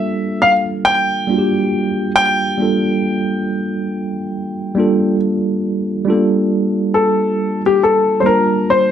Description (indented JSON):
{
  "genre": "R&B",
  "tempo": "69 BPM",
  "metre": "4/4",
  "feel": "swing 64% on 16ths",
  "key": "G minor",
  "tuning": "A4 = 440 Hz",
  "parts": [
    { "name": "clear grand piano", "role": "melody", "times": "0.0-8.9 s", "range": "G4 to G5", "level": "-16 LUFS", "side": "left 2 dB", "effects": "slapback echo" },
    { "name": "mellow tine electric piano", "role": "accompaniment", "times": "0.0-8.9 s", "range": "G3 to A5", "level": "-17 LUFS", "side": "right 1 dB", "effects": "medium stereo tremolo" }
  ],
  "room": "wet studio reverb, RT60 0.7 s",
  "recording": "none",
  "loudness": "-14 LUFS",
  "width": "side -9 dB against mid",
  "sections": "0.0-6.1 A section; 6.1-8.9 B section",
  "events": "grand piano solo 6.1-8.9",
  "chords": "0.0 Gm7",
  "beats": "0.84 1.71 | 2.58 3.45 4.32 5.19 | 6.06 6.93 7.80 8.67"
}